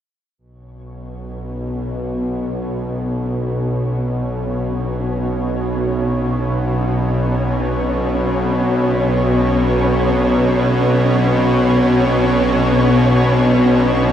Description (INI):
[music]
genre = dark ambient drone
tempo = free time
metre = none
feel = none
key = unclear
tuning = A4 = 440 Hz
[part]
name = bowed-like drone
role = drone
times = 0.8-14.1 s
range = B1 to B2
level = -16 LUFS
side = equal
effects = built-in reverb
[part]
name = flickering grainy texture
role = texture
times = 1.2-14.1 s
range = C#4 to C#5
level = -22 LUFS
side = equal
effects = built-in reverb, wide subtle chorus
[sound]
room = wet huge ambient reverb, RT60 8.1 s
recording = dreamy mix soaked in reverb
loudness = -15 LUFS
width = side -10 dB against mid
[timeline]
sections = 0.4-14.1 A section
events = fade-in on synth texture 0.4-14.1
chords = 0.4 Bsus2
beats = free time